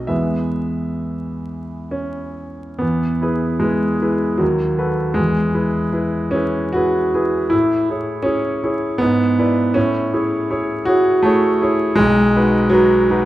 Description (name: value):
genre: classical, romantic character piece for solo piano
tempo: 62-82 BPM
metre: 3/4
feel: rubato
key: E major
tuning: A4 = 440 Hz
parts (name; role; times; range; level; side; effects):
- bright concert grand piano; solo; 0.0-13.3 s; B1 to E5; -16 LUFS; equal; none
room: moderate recital hall reverb, RT60 1.5 s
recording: dark, warm production, vinyl crackle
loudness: -15 LUFS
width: side -15 dB against mid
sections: 0.0-2.8 A section; 2.8-13.3 B section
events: none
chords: 0.1 E; 4.4 B7/D#; 5.2 E; 7.5 Amaj7; 9.0 E7/G#; 9.8 Amaj7; 12.0 B